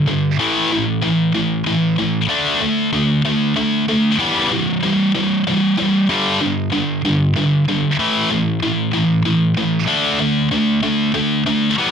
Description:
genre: rock.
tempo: 63 BPM (dotted quarters).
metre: 6/8.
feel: straight.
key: unclear.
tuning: A4 = 437 Hz.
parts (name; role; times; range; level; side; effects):
heavy high-gain guitar; solo; 0.0-11.9 s; G2 to D4; -15 LUFS; equal; distortion.
room: light reverb.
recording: dry, close 1970s-style studio recording.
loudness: -15 LUFS.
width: side -7 dB against mid.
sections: 0.0-8.0 A section; 8.0-11.9 A section.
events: none.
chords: 0.4 A5; 2.3 D5; 4.2 Em; 6.1 G5; 8.0 A5; 9.9 D5.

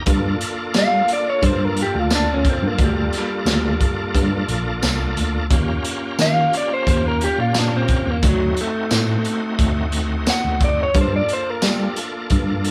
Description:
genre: straight-eighth soul blues.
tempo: 88 BPM.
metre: 4/4.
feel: straight.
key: G minor.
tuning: A4 = 443 Hz.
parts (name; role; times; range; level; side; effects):
bright tonewheel organ; accompaniment; 0.0-12.7 s; A3 to A4; -28 LUFS; equal; overdrive, chorus vibrato, fast rotary speaker.
tine electric piano; bass; 0.1-12.7 s; Bb1 to G3; -24 LUFS; equal; overdrive.
crunchy breakbeat drum kit; drums; 0.1-12.7 s; hi-hat, kick drum, snare drum, tambourine; -24 LUFS; equal; none.
electric guitar through a small old amp; melody; 0.8-12.0 s; F#3 to F#5; -24 LUFS; equal; none.
room: light reverb.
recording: band playing live in one room.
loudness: -19 LUFS.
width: mono.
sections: 0.0-12.7 A section.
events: clean electric guitar solo 0.0-12.7.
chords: 0.1 Gm7; 5.5 Eb7; 8.2 D7b9; 10.9 Gm7.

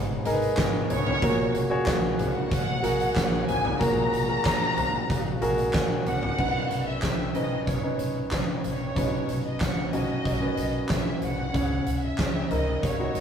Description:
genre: piano-driven pop.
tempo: 93 BPM.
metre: 4/4.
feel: straight.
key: B major.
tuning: A4 = 440 Hz.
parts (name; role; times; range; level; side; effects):
warm studio violin section; melody; 0.0-13.2 s; C#5 to A#5; -31 LUFS; equal; none.
warm concert grand piano; accompaniment; 0.0-13.2 s; G#2 to C#5; -28 LUFS; right 1 dB; none.
percussive tonewheel organ; sustained chords; 0.0-6.3 s; G#3 to F#4; -40 LUFS; equal; none.
picked steel-string acoustic guitar; riff; 0.0-6.4 s; G#2 to G#4; -37 LUFS; right 2 dB; none.
upright bass; bass; 0.0-13.2 s; G#1 to C#2; -33 LUFS; equal; none.
huge arena drum kit; drums; 0.3-13.2 s; crash cymbal, handclaps, hi-hat, kick drum, snare drum, toms; -27 LUFS; equal; none.
room: moderate small room ambience, RT60 0.5 s.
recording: rough rehearsal-room recording.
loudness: -23 LUFS.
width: side -8 dB against mid.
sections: 0.0-6.4 A section; 6.4-13.2 B section.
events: none.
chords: 0.0 G#m; 1.2 F#add9; 6.4 Badd9; 11.5 C#madd9.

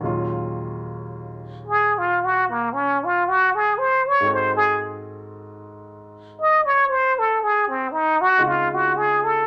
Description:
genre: jazz.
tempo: 58 BPM.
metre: 4/4.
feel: swing 68% on 8ths.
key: Eb dorian.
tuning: A4 = 443 Hz.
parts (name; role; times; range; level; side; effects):
warm baby grand piano; accompaniment; 0.0-9.5 s; Eb2 to A4; -32 LUFS; equal; none.
trumpet with plunger mute; melody; 1.7-9.5 s; Bb3 to Eb5; -20 LUFS; equal; none.
room: moderate studio reverb, RT60 0.7 s.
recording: none.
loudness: -20 LUFS.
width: mono.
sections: 0.0-9.5 A section.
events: muted trumpet solo 0.0-9.5.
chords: 0.0 Ebm11; 4.2 Ab7b9; 8.4 Dbmaj7.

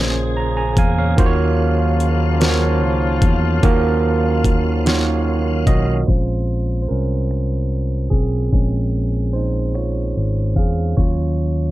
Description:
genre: slow six-eight R&B.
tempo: 49 BPM (dotted quarters).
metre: 6/8.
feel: straight.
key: Bb minor.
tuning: A4 = 440 Hz.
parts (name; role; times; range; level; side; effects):
overdriven tine electric piano; accompaniment; 0.0-11.7 s; Bb2 to Bb5; -21 LUFS; right 4 dB; none.
tonewheel organ; sustained chords; 0.0-6.0 s; Db3 to F5; -27 LUFS; left 2 dB; overdrive, chorus vibrato, slow rotary speaker.
clear horn section; stabs; 0.0-5.6 s; Db3 to Ab4; -27 LUFS; left 7 dB; ping-pong delay.
fingered electric bass; bass; 0.0-11.7 s; Ab1 to E2; -19 LUFS; left 1 dB; none.
smooth R&B drum kit; drums; 0.8-11.2 s; finger snaps, hi-hat, kick drum, snare drum; -17 LUFS; left 1 dB; none.
room: little or no reverb.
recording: dark, warm production, low-pass filter.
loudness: -16 LUFS.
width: side -16 dB against mid.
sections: 0.0-6.1 A section; 6.1-11.7 B section.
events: tine electric piano fill 0.0-1.2; tine electric piano solo 6.1-11.7; filter sweep 6.1-11.7.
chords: 0.0 Bbm9; 1.2 Ebm9; 6.1 Bbm9; 11.0 Ebm9.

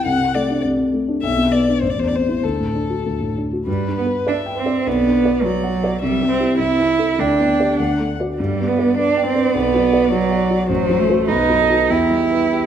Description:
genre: quick classical-period movement for piano trio.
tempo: 96-105 BPM.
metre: 2/4.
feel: rubato.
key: G major.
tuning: A4 = 440 Hz.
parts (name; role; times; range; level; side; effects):
rich violin; melody; 0.0-12.6 s; G4 to G5; -24 LUFS; left 6 dB; none.
dark concert grand piano; accompaniment; 0.0-12.7 s; A1 to G5; -20 LUFS; left 1 dB; none.
rich cello; second line; 3.7-12.7 s; F#3 to E4; -17 LUFS; right 5 dB; none.
room: wet recital hall reverb, RT60 1.5 s.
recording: none.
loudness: -16 LUFS.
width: side -9 dB against mid.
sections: 0.0-3.7 A section; 3.7-12.7 B section.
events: none.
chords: 0.1 D5/C; 1.2 Bmadd11; 1.8 Am; 2.4 D; 3.7 G; 4.9 Bm; 6.0 C; 6.6 Am/C; 7.2 G/D; 7.8 D; 8.4 G; 9.5 Bm; 10.7 F#dim/A; 11.3 B; 11.9 Em.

